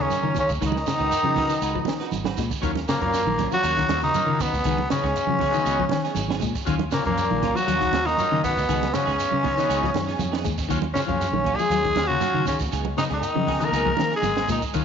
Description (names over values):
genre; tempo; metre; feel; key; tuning
afrobeat; 119 BPM; 4/4; straight; unclear; A4 = 440 Hz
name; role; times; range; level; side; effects
raspy tenor saxophone; melody; 0.0-14.6 s; Bb3 to Bb4; -24 LUFS; equal; none
brilliant trombone section; second line; 0.0-14.6 s; Bb2 to Bb3; -32 LUFS; left 9 dB; none
clear trombone; second line; 0.0-14.6 s; Bb3 to Bb4; -32 LUFS; right 6 dB; none
semi-hollow electric guitar; arpeggios; 0.0-14.8 s; Db3 to Ab3; -30 LUFS; left 9 dB; phaser, slapback echo
clean electric guitar; stabs; 0.0-14.8 s; Gb3 to Cb5; -33 LUFS; right 7 dB; ensemble chorus
fingered electric bass; bass; 0.0-14.8 s; Ab1 to Eb3; -29 LUFS; equal; none
shekere; percussion; 0.0-14.8 s; none; -36 LUFS; right 6 dB; none
compact cocktail drum kit; drums; 0.1-14.8 s; hi-hat, kick drum, snare drum; -31 LUFS; right 3 dB; none
congas; percussion; 0.1-14.8 s; none; -32 LUFS; right 12 dB; none
combo organ; accompaniment; 2.6-14.8 s; Cb3 to F4; -34 LUFS; left 11 dB; none
room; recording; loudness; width
moderate echo chamber reverb, RT60 2.1 s; 1960s-style stereo with parts hard left and right, nothing above 7.5 kHz; -20 LUFS; side -7 dB against mid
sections
0.0-14.8 A section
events
drum fill 2.1-2.6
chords
0.0 Eb7sus2; 0.6 Db9sus4; 2.6 Ebm9; 4.7 Db9sus4; 6.7 Ebm9; 8.7 Db9sus4; 10.7 Ebm9; 12.7 Db9sus4